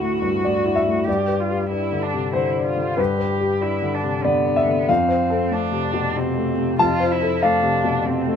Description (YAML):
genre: neoclassical piano and strings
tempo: 94 BPM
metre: 3/4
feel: rubato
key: unclear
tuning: A4 = 440 Hz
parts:
  - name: muted cello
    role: second line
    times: 0.0-8.4 s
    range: B3 to G4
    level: -24 LUFS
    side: right 4 dB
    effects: none
  - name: warm grand piano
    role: accompaniment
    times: 0.0-8.4 s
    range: D2 to A5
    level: -19 LUFS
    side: left 3 dB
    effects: none
room: light reverb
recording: minimal, uncompressed stereo recording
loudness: -18 LUFS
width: side -7 dB against mid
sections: 0.0-8.4 A section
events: none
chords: 0.0 Dadd9; 1.1 G; 4.9 F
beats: 0.43 | 1.07 1.71 2.35 | 2.99 3.62 4.25 | 4.88 5.52 6.15 | 6.79 7.42 8.07